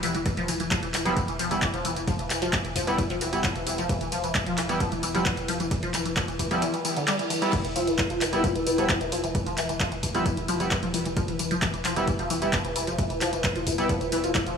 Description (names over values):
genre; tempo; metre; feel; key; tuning
driving peak-time techno; 132 BPM; 4/4; straight; E phrygian; A4 = 440 Hz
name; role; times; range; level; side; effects
resonant blip pluck; riff; 0.0-14.5 s; D3 to E4; -28 LUFS; left 1 dB; phaser, ensemble chorus, sidechain pumping, tape echo
warm sub bass; bass; 0.0-14.6 s; E1; -40 LUFS; equal; overdrive, sidechain pumping, low-pass filter
punchy analog drum machine; drums; 0.0-14.6 s; crash cymbal, handclaps, hi-hat, ride cymbal, tambourine; -30 LUFS; equal; none
electronic kick drum; drums; 0.3-14.4 s; none; -30 LUFS; equal; none
sync-sweep polysynth; stabs; 1.1-13.9 s; G3 to E4; -31 LUFS; right 1 dB; chorus, sidechain pumping, tape echo
reverse cymbal; sound effects; 6.8-7.5 s; none; -38 LUFS; right 5 dB; none
room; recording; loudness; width
moderate lush hall reverb, RT60 2.3 s; small room ambience; -24 LUFS; side -6 dB against mid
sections
0.0-14.6 A section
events
reverse cymbal 6.8-7.5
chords
0.0 Em